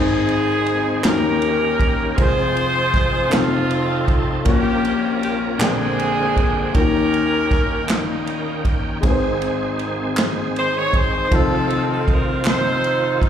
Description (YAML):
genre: slow gospel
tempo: 53 BPM (dotted quarters)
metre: 6/8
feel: straight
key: Ab major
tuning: A4 = 439 Hz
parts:
  - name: bright saxophone section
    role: melody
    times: 0.0-13.3 s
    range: G3 to Db5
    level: -21 LUFS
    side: right 1 dB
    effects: slapback echo
  - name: dark grand piano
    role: accompaniment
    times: 0.0-13.3 s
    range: F1 to A5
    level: -21 LUFS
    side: left 4 dB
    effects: slapback echo
  - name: bright tonewheel organ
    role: sustained chords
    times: 0.0-13.3 s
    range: D3 to G5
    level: -25 LUFS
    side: right 4 dB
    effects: fast rotary speaker, overdrive, chorus vibrato
  - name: swinging big-band drum kit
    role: drums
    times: 0.3-13.3 s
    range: kick drum, ride cymbal, snare drum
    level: -22 LUFS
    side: right 1 dB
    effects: none
  - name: group handclap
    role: percussion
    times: 1.0-12.8 s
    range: none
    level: -27 LUFS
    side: right 2 dB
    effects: slapback echo
room: moderate club reverb, RT60 0.7 s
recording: live gig heard through the venue's PA, club reverb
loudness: -16 LUFS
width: side -9 dB against mid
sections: 0.0-13.3 A section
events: none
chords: 0.0 Ab; 1.0 Eb7; 2.2 Fm; 3.3 F7; 4.5 Bbm; 5.6 Bb13; 6.7 Eb7; 9.0 Ab; 11.3 F7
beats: 1.04 | 2.18 3.32 | 4.47 5.61 | 6.75 7.89 | 9.03 10.17 | 11.31 12.46